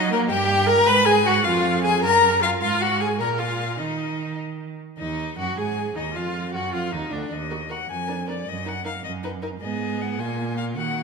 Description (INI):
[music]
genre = quick classical-period movement for string quartet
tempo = 104 BPM (dotted quarters)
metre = 6/8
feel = straight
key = Eb minor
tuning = A4 = 443 Hz
[part]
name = rich violin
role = melody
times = 0.0-11.0 s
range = Bb4 to Cb6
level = -24 LUFS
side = left 7 dB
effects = none
[part]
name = clear violin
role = second line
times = 0.0-11.0 s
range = Bb3 to Cb5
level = -27 LUFS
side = left 2 dB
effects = none
[part]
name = clear viola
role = accompaniment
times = 0.0-11.0 s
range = Bb3 to Cb5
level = -26 LUFS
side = right 4 dB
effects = none
[part]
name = clear cello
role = bass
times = 0.0-11.0 s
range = D2 to Gb3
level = -28 LUFS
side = right 5 dB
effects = none
[sound]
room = wet scoring stage reverb, RT60 1.9 s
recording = minimal, uncompressed stereo recording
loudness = -20 LUFS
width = side -4 dB against mid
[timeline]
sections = 0.0-5.0 A section; 5.0-11.0 A section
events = none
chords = 0.3 Gm; 0.9 Abm7; 1.4 Fm; 2.0 Gb; 2.6 Fm/Ab; 3.2 Bb5; 3.8 N.C.; 5.0 Ebm; 5.6 Ebsus4; 6.2 Ebmadd9; 7.3 Ebm; 7.9 Bb7/F; 8.5 Ebm/Gb; 9.6 Abm7; 10.2 Bb5